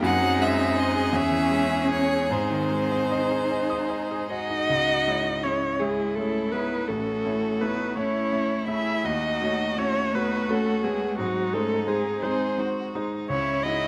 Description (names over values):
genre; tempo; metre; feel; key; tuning
classical, slow romantic movement for piano quintet; 49-58 BPM (dotted quarters); 6/8; rubato; C# minor; A4 = 440 Hz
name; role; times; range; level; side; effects
clear violin; melody; 0.0-13.9 s; B3 to F#5; -33 LUFS; equal; none
clear violin; second line; 0.0-13.9 s; D#4 to G#4; -36 LUFS; equal; none
rich cello; second line; 0.0-13.9 s; F#3 to E4; -33 LUFS; equal; none
bright grand piano; accompaniment; 0.0-13.9 s; A1 to D#6; -30 LUFS; equal; none
rich viola; accompaniment; 0.0-13.9 s; B#3 to E5; -30 LUFS; equal; none
room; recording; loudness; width
moderate concert hall reverb, RT60 2.3 s; close, detailed microphones; -25 LUFS; mono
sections
0.0-4.7 A section; 4.7-13.9 B section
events
none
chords
0.0 G#7/F#; 1.1 C#m/E; 2.3 G#; 4.7 C#m; 6.9 A; 9.0 D#m7b5; 11.2 G#; 13.3 C#m